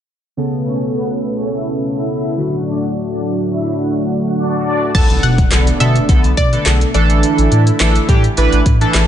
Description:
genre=dance-pop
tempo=105 BPM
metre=4/4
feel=straight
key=unclear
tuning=A4 = 440 Hz
part: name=chorused polysynth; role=accompaniment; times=0.4-9.0 s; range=C#3 to B4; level=-18 LUFS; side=right 1 dB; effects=none
part: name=lush unison pad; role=sustained chords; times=0.4-9.1 s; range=A2 to E4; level=-21 LUFS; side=equal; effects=chorus, sidechain pumping
part: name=filtered supersaw swell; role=melody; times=0.7-4.8 s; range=B3 to F#5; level=-23 LUFS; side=left 1 dB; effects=sidechain pumping, tape echo
part: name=analog pluck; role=melody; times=4.9-8.6 s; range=D5 to A5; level=-22 LUFS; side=equal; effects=chorus, phaser, tape echo
part: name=round analog bass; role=bass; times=4.9-9.1 s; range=A1 to B2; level=-14 LUFS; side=equal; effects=sidechain pumping
part: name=deep house drum kit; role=drums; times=4.9-9.1 s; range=crash cymbal, handclaps, hi-hat, kick drum, snare drum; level=-15 LUFS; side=equal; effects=none
part: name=impact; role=sound effects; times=4.9-7.2 s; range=none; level=-24 LUFS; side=equal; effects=none
room=light reverb, digital ambience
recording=low-pass filter, nothing above 10.4 kHz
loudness=-12 LUFS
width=side -10 dB against mid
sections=0.4-4.9 A section; 4.9-9.1 B section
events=filter sweep 0.4-4.9; impact 4.9-7.2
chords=0.4 Aadd9; 2.4 D; 4.9 Bm7; 6.9 Asus4

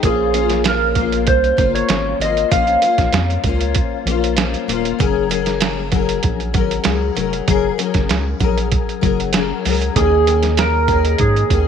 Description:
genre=indie pop, bedroom pop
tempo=97 BPM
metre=4/4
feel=straight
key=unclear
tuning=A4 = 440 Hz
part: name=picked steel-string acoustic guitar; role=accompaniment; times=0.0-11.7 s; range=Eb3 to C5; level=-20 LUFS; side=left 12 dB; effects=ensemble chorus, warbly pitch drift
part: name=round analog bass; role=bass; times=0.0-11.7 s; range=Eb1 to Ab2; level=-21 LUFS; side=equal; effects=none
part: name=lo-fi sampler-style drum kit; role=drums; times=0.0-11.6 s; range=hi-hat, kick drum, snare drum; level=-20 LUFS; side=right 3 dB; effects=none
part: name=clean lap steel guitar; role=melody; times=0.1-3.7, 10.0-11.7 s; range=Ab4 to F5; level=-17 LUFS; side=right 3 dB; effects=lush chorus, tape echo
room=light reverb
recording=1960s-style stereo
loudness=-14 LUFS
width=side -7 dB against mid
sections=0.0-11.7 A section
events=none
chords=0.0 Bbmadd9; 5.0 Gbadd9; 10.0 Eb7sus4

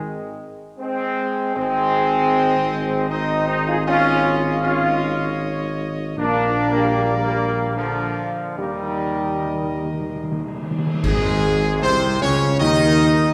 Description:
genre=classical, ceremonial fanfare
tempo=77 BPM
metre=3/4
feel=straight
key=Ab major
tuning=A4 = 440 Hz
part: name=clear trombone section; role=sustained chords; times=0.0-13.3 s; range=Ab2 to Ab4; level=-24 LUFS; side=equal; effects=none
part: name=warm French horn section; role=sustained chords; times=0.0-13.3 s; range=D3 to F4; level=-28 LUFS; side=equal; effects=none
part: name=clear trumpet section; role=melody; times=1.6-13.3 s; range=Ab4 to Eb5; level=-28 LUFS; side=equal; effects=none
part: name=dark tuba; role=bass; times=1.6-13.3 s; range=Ab1 to Eb2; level=-26 LUFS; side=equal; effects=none
part: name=cymbal swell, clash cymbals and concert bass drum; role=percussion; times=8.6-12.6 s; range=none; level=-32 LUFS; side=equal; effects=none
part: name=timpani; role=percussion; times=8.6-12.2 s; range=Ab2 to Eb3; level=-29 LUFS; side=equal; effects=none
room=wet concert hall reverb, RT60 2.1 s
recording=recorded in a church or concert hall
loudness=-20 LUFS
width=mono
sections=0.0-11.0 A section; 11.0-13.3 B section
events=timpani fill 8.6-11.0; band accent 11.0-11.8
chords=0.0 Ab; 3.9 Dbadd9/Ab; 6.2 Bb; 8.6 Eb; 11.0 Ab

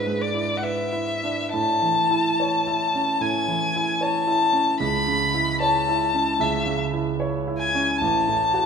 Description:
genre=classical, romantic duo for violin and grand piano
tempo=75 BPM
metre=4/4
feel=rubato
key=A major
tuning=A4 = 443 Hz
part: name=rich violin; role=melody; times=0.0-8.7 s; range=B4 to B5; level=-22 LUFS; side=left 3 dB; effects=none
part: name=clear concert grand piano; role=accompaniment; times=0.0-8.7 s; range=A1 to C#5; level=-25 LUFS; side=right 3 dB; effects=none
room=wet concert hall reverb, RT60 2.0 s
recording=none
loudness=-20 LUFS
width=side -6 dB against mid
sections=0.0-8.7 A section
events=none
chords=0.0 E7/G#; 1.6 A; 4.8 A/C#; 8.0 F#m/A

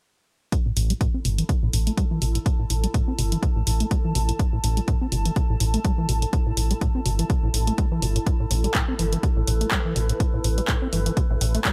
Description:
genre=acid house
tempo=124 BPM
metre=4/4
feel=swing 56% on 16ths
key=unclear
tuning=A4 = 443 Hz
part: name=acid bass, square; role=riff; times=0.5-11.7 s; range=A2 to C4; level=-30 LUFS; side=equal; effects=overdrive
part: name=electronic kick drum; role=drums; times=0.5-11.7 s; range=none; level=-26 LUFS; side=equal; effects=none
part: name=punchy analog drum machine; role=drums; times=0.5-11.7 s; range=handclaps, hi-hat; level=-31 LUFS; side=equal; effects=none
part: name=granular cloud pad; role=texture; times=1.4-11.7 s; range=E4 to A5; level=-35 LUFS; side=equal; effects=built-in reverb, sidechain pumping
part: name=round analog bass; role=bass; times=0.8-11.6 s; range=G1 to A1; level=-26 LUFS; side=equal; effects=sidechain pumping
room=digital ambience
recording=none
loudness=-23 LUFS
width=mono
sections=0.5-11.7 A section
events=filter sweep on acid bass 0.5-11.7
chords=0.5 A5

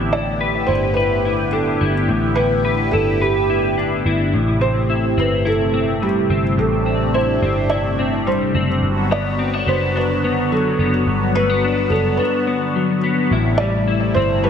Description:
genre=dream pop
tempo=107 BPM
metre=4/4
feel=straight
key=A dorian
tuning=A4 = 439 Hz
part: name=phased analog pad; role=sustained chords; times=0.0-14.5 s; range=C3 to G4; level=-22 LUFS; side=right 1 dB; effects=phaser, chorus
part: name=clean electric guitar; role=arpeggios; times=0.0-14.5 s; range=G2 to B4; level=-20 LUFS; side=left 4 dB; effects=analog chorus, analog delay
part: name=vintage muted picked electric bass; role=bass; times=0.0-14.5 s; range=F#1 to A1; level=-22 LUFS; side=right 1 dB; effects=none
part: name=felt-muted upright piano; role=melody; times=0.1-14.5 s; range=G4 to D5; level=-22 LUFS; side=right 2 dB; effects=analog delay
room=moderate echo chamber reverb, RT60 1.7 s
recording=echo-heavy mix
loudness=-16 LUFS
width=side -7 dB against mid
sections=0.0-13.3 A section; 13.3-14.5 B section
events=none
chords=0.0 Em7; 4.3 Am7; 8.8 Gmaj7; 13.3 Am7

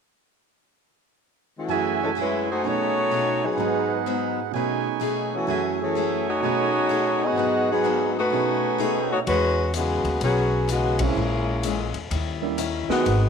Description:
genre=jazz, big band swing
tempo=127 BPM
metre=4/4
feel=swing 66% on 8ths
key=E major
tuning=A4 = 441 Hz
part: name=mellow saxophone section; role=melody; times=1.6-13.3 s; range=C#3 to D#5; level=-23 LUFS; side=left 2 dB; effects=none
part: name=picked steel-string acoustic guitar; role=accompaniment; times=1.7-13.3 s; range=G#2 to G#4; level=-31 LUFS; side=left 10 dB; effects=none
part: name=warm concert grand piano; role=accompaniment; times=1.7-13.0 s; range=F#2 to D#5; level=-29 LUFS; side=right 12 dB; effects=none
part: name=warm trumpet section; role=stabs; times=1.7-9.3 s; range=D#4 to G#5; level=-29 LUFS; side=right 11 dB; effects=none
part: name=upright bass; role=bass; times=9.3-13.3 s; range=G#1 to E2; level=-26 LUFS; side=equal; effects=none
part: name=swinging big-band drum kit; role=drums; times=9.3-13.2 s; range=hi-hat, kick drum, ride cymbal, snare drum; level=-32 LUFS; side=left 4 dB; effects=none
room=moderate echo chamber reverb, RT60 1.4 s, small room reverb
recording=1960s-style stereo with parts hard left and right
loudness=-21 LUFS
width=side -6 dB against mid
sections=0.0-1.7 A section; 1.7-9.3 B section; 9.3-13.3 C section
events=band accent 10.9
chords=0.0 N.C.; 1.7 F#m9; 2.6 B13; 3.6 G#m7; 4.5 B13; 5.5 F#m9; 6.4 B13; 7.4 G#m7; 8.3 B13; 9.3 E69; 11.2 A#m7b5; 12.1 D#7b9

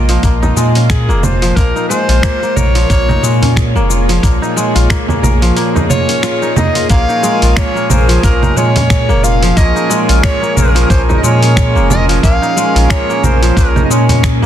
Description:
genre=organic downtempo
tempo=90 BPM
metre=4/4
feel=swing 57% on 16ths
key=Bb minor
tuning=A4 = 443 Hz
part: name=bowed-like drone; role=sustained chords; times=0.0-14.5 s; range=Bb2 to Eb5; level=-19 LUFS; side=equal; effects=built-in reverb, sidechain pumping
part: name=kora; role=arpeggios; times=0.0-14.5 s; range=F3 to Bb4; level=-17 LUFS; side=equal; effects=tape echo
part: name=warm sub bass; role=bass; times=0.0-14.5 s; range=F1 to Bb2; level=-12 LUFS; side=equal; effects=none
part: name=dusty soul sampler-style drum kit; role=drums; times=0.1-14.5 s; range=congas, finger snaps, hi-hat, shaker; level=-18 LUFS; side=right 2 dB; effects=soft clipping on snare
part: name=electronic kick drum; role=drums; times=0.2-14.4 s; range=none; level=-14 LUFS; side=equal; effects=none
part: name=frame drum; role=percussion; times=0.4-14.2 s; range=none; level=-19 LUFS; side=right 2 dB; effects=none
part: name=bright clarinet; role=melody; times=0.9-14.3 s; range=Ab4 to F5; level=-18 LUFS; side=equal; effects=tape echo
part: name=hand-pumped harmonium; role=accompaniment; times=6.9-14.0 s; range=F3 to Ab4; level=-19 LUFS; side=right 3 dB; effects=sidechain pumping, tape echo
room=small room ambience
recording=dense, heavily limited modern master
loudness=-9 LUFS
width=side -10 dB against mid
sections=0.0-6.9 A section; 6.9-14.5 B section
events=band accent 6.2-6.6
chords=0.0 Bbm7

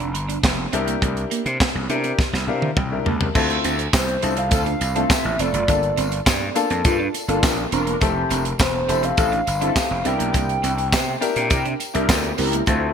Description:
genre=early-eighties boogie funk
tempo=103 BPM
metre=4/4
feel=straight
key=unclear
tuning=A4 = 440 Hz
part: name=electric guitar at the edge of break-up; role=riff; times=0.0-12.8 s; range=A3 to E4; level=-30 LUFS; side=right 11 dB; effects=analog chorus
part: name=gritty slap bass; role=bass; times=0.0-12.9 s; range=E1 to C3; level=-24 LUFS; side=equal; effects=overdrive
part: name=tight funk drum kit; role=drums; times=0.0-12.8 s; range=crash cymbal, handclaps, hi-hat, kick drum, snare drum, toms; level=-22 LUFS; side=right 1 dB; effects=gated reverb
part: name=warm baby grand piano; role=accompaniment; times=0.7-12.9 s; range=Bb3 to A5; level=-26 LUFS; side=left 5 dB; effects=wide subtle chorus
part: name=tambourine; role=percussion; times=3.4-12.8 s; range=none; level=-35 LUFS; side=left 8 dB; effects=none
part: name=hollow clarinet-like synth lead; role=melody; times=3.9-11.2 s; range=C5 to G5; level=-25 LUFS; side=equal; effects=chorus, phaser, ping-pong delay
part: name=mellow synth brass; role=second line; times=4.5-12.6 s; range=A3 to Bb4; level=-28 LUFS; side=left 1 dB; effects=chorus, phaser, ping-pong delay
room=light reverb, studio ambience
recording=bright 1980s-style digital production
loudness=-18 LUFS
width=side -7 dB against mid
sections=0.0-3.4 A section; 3.4-12.9 B section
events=drum fill 2.2-3.4; grand piano fill 2.2-3.4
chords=0.0 Fsus2; 0.7 C9; 3.4 Dm9; 5.7 Gm9; 8.0 Fmaj9; 10.1 C9

